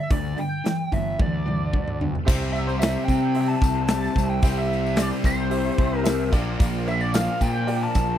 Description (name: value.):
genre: classic rock.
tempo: 111 BPM.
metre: 4/4.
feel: straight.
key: C mixolydian.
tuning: A4 = 441 Hz.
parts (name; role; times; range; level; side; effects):
lead guitar through a small cranked amp; melody; 0.0-8.2 s; C5 to A5; -28 LUFS; equal; wah, overdrive.
distorted electric guitar; riff; 0.0-8.2 s; G2 to C4; -27 LUFS; left 2 dB; distortion.
fuzz picked electric bass; bass; 0.1-8.2 s; G1 to C3; -26 LUFS; equal; overdrive.
big rock drum kit; drums; 0.1-8.1 s; crash cymbal, hi-hat, kick drum, snare drum, toms; -23 LUFS; equal; none.
tonewheel organ; sustained chords; 2.0-8.2 s; A3 to E5; -38 LUFS; equal; none.
honky-tonk upright piano; accompaniment; 2.3-8.1 s; F4 to E5; -34 LUFS; right 5 dB; none.
tambourine; percussion; 2.3-8.1 s; none; -41 LUFS; left 10 dB; none.
room: little or no reverb.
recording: dry, close 1970s-style studio recording.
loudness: -20 LUFS.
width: side -10 dB against mid.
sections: 0.0-2.3 A section; 2.3-8.2 B section.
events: drum fill 1.2-2.3.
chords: 0.0 G5; 2.3 C; 6.3 Bb.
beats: | 0.10 0.65 1.19 1.73 | 2.27 2.81 3.36 3.90 | 4.44 4.98 5.52 6.06 | 6.60 7.14 7.68.